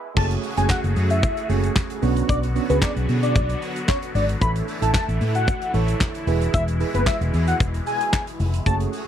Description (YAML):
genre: dance-pop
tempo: 113 BPM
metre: 4/4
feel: straight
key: unclear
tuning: A4 = 440 Hz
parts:
  - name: soft electric-piano-like synth keys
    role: accompaniment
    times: 0.0-8.9 s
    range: A3 to E5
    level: -27 LUFS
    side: right 14 dB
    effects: chorus, sidechain pumping
  - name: filtered supersaw swell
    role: sustained chords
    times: 0.0-9.1 s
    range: B2 to G#4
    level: -31 LUFS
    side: left 2 dB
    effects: sidechain pumping
  - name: wide unison lead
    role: melody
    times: 0.2-8.8 s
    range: B4 to B5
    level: -24 LUFS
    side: left 2 dB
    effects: slapback echo
  - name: vintage muted fingered electric bass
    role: bass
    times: 0.2-8.8 s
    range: E1 to B2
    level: -22 LUFS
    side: left 1 dB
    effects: sidechain pumping
  - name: huge arena drum kit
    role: drums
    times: 0.2-9.1 s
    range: crash cymbal, handclaps, hi-hat, kick drum, shaker, snare drum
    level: -24 LUFS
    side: left 1 dB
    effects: none
room: little or no reverb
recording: dry, close 1970s-style studio recording, high-pass filter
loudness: -19 LUFS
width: side -10 dB against mid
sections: 0.2-9.1 A section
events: break 0.0; drop 0.2-9.1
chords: 0.2 F#madd9; 2.0 Bmadd9; 4.4 A; 6.3 E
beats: | 0.17 0.70 1.23 1.76 | 2.29 2.82 3.35 3.88 | 4.42 4.95 5.48 6.01 | 6.54 7.07 7.60 8.13 | 8.66